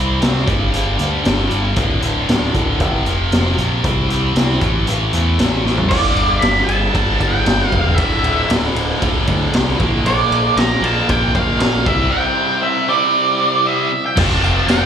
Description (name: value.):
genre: classic rock.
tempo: 116 BPM.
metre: 4/4.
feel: straight.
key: unclear.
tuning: A4 = 442 Hz.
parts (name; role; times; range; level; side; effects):
distorted electric guitar; riff; 0.0-14.9 s; D2 to F4; -19 LUFS; equal; overdrive, slapback echo.
growling picked electric bass; bass; 0.0-14.9 s; D1 to E2; -20 LUFS; equal; overdrive.
raw garage drum kit; drums; 0.2-14.8 s; crash cymbal, hi-hat, kick drum, ride cymbal, snare drum, toms; -19 LUFS; equal; none.
octave-fuzz lead guitar; melody; 5.9-14.9 s; D5 to B5; -17 LUFS; right 1 dB; distortion, slapback echo, analog delay.
tonewheel organ; sustained chords; 10.0-14.9 s; A3 to D5; -29 LUFS; right 1 dB; none.
tambourine; percussion; 14.2-14.8 s; none; -35 LUFS; right 3 dB; none.
room: light reverb.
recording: live gig heard through the venue's PA, club reverb.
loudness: -14 LUFS.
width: side -8 dB against mid.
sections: 0.0-5.9 A section; 5.9-14.2 B section.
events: drum fill 5.7.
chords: 0.5 G5; 1.8 D5; 2.8 F5; 3.8 C5; 4.6 A5; 5.9 G5; 8.0 Dsus2; 9.8 Bb; 11.9 Cadd9; 14.2 F.